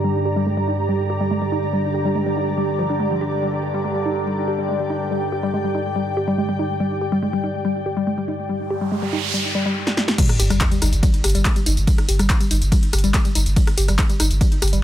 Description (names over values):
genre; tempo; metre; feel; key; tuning
driving peak-time techno; 142 BPM; 4/4; straight; G minor; A4 = 440 Hz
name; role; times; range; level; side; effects
woody wave-folded pluck; riff; 0.0-14.8 s; F3 to G4; -24 LUFS; left 1 dB; chorus, sidechain pumping, digital delay
analog drone; drone; 0.0-9.8 s; G2 to D3; -26 LUFS; left 1 dB; chorus, sidechain pumping
ethereal airy pad; texture; 0.0-9.8 s; G4 to Bb5; -25 LUFS; right 1 dB; ensemble chorus, built-in reverb, sidechain pumping
noise sweep and sub drop; sound effects; 8.8-11.9 s; none; -26 LUFS; right 1 dB; none
punchy analog drum machine; drums; 9.9-14.8 s; crash cymbal, handclaps, hi-hat, ride cymbal, rim click, snare drum, tambourine; -23 LUFS; equal; overdrive
electronic kick drum; drums; 10.2-14.5 s; none; -18 LUFS; equal; overdrive
saturated sub bass; bass; 10.4-14.8 s; G1; -19 LUFS; equal; overdrive, sidechain pumping, low-pass filter
room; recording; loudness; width
light reverb; none; -18 LUFS; side -12 dB against mid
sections
0.0-10.2 A section; 10.2-14.8 B section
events
filter sweep on synth arpeggio sound 0.0-10.2; noise sweep 8.8-10.2; drum fill 9.9-10.2; drop 10.2-14.8; impact 10.2-11.9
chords
0.0 Gm; 10.2 G5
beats
| 0.04 0.47 0.89 1.31 | 1.73 2.15 2.58 3.00 | 3.42 3.85 4.27 4.69 | 5.11 5.54 5.96 6.38 | 6.80 7.23 7.65 8.07 | 8.49 8.92 9.34 9.76 | 10.18 10.61 11.03 11.45 | 11.87 12.30 12.72 13.14 | 13.56 13.99 14.41